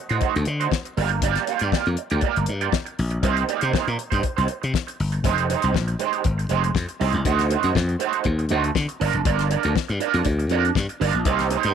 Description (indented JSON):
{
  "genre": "disco",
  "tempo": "120 BPM",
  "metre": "4/4",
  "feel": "straight",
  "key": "unclear",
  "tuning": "A4 = 442 Hz",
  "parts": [
    { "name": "electric guitar at the edge of break-up", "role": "accompaniment", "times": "0.1-11.7 s", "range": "Ab3 to F5", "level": "-24 LUFS", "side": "right 12 dB", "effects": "wah" },
    { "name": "slap bass", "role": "bass", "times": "0.1-11.7 s", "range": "F1 to D3", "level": "-23 LUFS", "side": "left 2 dB", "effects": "none" },
    { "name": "damped 70s drum kit", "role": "drums", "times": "0.1-11.7 s", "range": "hi-hat, kick drum, snare drum", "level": "-26 LUFS", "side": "left 5 dB", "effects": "none" }
  ],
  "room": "little or no reverb",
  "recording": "1960s-style stereo",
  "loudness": "-20 LUFS",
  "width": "side -8 dB against mid",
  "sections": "0.0-5.2 A section; 5.2-11.7 B section",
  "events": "none",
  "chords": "0.0 D7b9; 1.0 Gm7; 3.2 Cm7; 5.2 Fm9; 7.2 D7b9; 9.0 Gm7",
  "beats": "0.22 0.72 | 1.22 1.72 2.23 2.73 | 3.23 3.73 4.24 4.74 | 5.24 5.74 6.25 6.75 | 7.25 7.75 8.25 8.75 | 9.25 9.75 10.26 10.76 | 11.26"
}